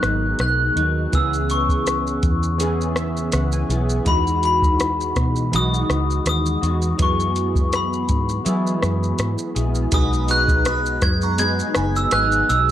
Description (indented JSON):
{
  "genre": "indie pop, bedroom pop",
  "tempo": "82 BPM",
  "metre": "4/4",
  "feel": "swing 55% on 16ths",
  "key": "B major",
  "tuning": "A4 = 440 Hz",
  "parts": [
    { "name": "glockenspiel with brass mallets", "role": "melody", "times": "0.0-12.7 s", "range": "B5 to G#6", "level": "-22 LUFS", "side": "left 1 dB", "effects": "lush chorus, analog delay" },
    { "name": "electric guitar through a small old amp", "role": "accompaniment", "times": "0.0-12.7 s", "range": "B2 to G#4", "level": "-27 LUFS", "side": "left 4 dB", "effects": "ensemble chorus, warbly pitch drift" },
    { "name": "warm analog keys", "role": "accompaniment", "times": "0.0-12.7 s", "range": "E3 to G#5", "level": "-27 LUFS", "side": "right 5 dB", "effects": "chorus, phaser, cassette tape" },
    { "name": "vintage muted fingered electric bass", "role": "bass", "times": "0.0-12.7 s", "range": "F#1 to F#3", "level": "-22 LUFS", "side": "equal", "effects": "none" },
    { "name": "soft vintage rhythm box", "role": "drums", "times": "0.0-12.7 s", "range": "hi-hat, kick drum, rim click, shaker", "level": "-23 LUFS", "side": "equal", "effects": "none" },
    { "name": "glassy synth bell", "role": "second line", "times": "9.9-12.7 s", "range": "D#5 to D#6", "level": "-30 LUFS", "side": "right 6 dB", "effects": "phaser, wide subtle chorus, analog delay" }
  ],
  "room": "little or no reverb",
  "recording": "dark, warm production",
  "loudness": "-17 LUFS",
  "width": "side -11 dB against mid",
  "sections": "0.0-9.9 A section; 9.9-12.7 B section",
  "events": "synth keys fill 2.6-4.1",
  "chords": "0.0 B6; 1.1 C#m7; 4.1 Emaj9; 7.0 F#9sus4; 9.9 B6"
}